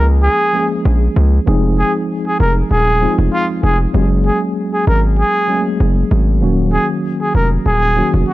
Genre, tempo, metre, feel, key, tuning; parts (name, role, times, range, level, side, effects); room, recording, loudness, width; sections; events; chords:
afrobeats; 97 BPM; 4/4; swing 55% on 16ths; A4 = 440 Hz
breathy trumpet; melody; 0.0-8.3 s; F4 to Bb4; -17 LUFS; right 1 dB
mellow tine electric piano; accompaniment; 0.0-8.3 s; Eb3 to Ab4; -18 LUFS; left 1 dB; medium stereo tremolo
hard-hitting 808-style bass; bass; 0.0-8.2 s; Eb1 to Db2; -13 LUFS; equal
small room ambience; worn, warbling old tape, cassette tape, warbly pitch drift; -12 LUFS; side -17 dB against mid
0.0-8.3 A section
0.0 Bbm7; 1.5 Fm7; 3.9 Gbadd9; 6.4 Ebm7